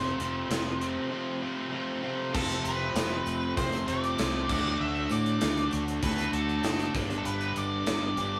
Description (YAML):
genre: classic rock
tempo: 98 BPM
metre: 4/4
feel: straight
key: unclear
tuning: A4 = 441 Hz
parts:
  - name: octave-fuzz lead guitar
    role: melody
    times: 0.0-8.4 s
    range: A4 to E5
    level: -36 LUFS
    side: equal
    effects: distortion
  - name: crunchy overdriven guitar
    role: riff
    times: 0.0-8.4 s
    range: F2 to D4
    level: -35 LUFS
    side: equal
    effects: none
  - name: distorted electric guitar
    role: riff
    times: 0.0-8.4 s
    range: F2 to G4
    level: -37 LUFS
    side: equal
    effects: overdrive
  - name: fingered electric bass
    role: bass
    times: 0.0-8.4 s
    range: F1 to A2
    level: -37 LUFS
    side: equal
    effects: none
  - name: gated 80s drum kit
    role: drums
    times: 0.2-8.3 s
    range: crash cymbal, hi-hat, kick drum, snare drum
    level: -35 LUFS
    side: equal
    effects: none
  - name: tonewheel organ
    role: sustained chords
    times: 2.3-8.4 s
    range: F3 to B4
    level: -46 LUFS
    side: equal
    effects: none
  - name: tambourine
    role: percussion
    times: 2.5-8.4 s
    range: none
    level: -54 LUFS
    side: equal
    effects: none
room: moderate studio reverb, RT60 0.9 s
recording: band playing live in one room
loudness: -29 LUFS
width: mono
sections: 0.0-2.3 A section; 2.3-8.4 B section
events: none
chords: 0.0 F; 4.5 D; 6.9 G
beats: 0.51 1.12 1.74 | 2.35 2.96 3.57 4.19 | 4.80 5.41 6.02 6.64 | 7.25 7.86